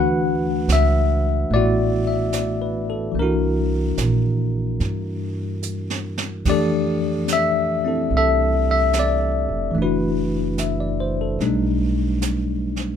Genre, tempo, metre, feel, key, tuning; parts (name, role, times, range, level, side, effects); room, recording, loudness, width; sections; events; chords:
jazz ballad; 73 BPM; 4/4; swing 67% on 8ths; A4 = 439 Hz
bell-like tine electric piano; accompaniment; 0.0-13.0 s; E3 to F#5; -20 LUFS; left 3 dB; medium stereo tremolo
upright bass; bass; 0.0-13.0 s; F1 to G2; -23 LUFS; right 2 dB
jazz brush drum kit; drums; 0.7-13.0 s; brushed snare drum, hi-hat, kick drum, ride cymbal, snare drum; -30 LUFS; right 5 dB
light reverb; minimal, uncompressed stereo recording; -18 LUFS; side -8 dB against mid
0.0-13.0 A section
drum fill 5.6-6.5
0.0 D69; 3.2 C9; 6.5 Fmaj9; 9.8 D13/F#; 11.4 B7alt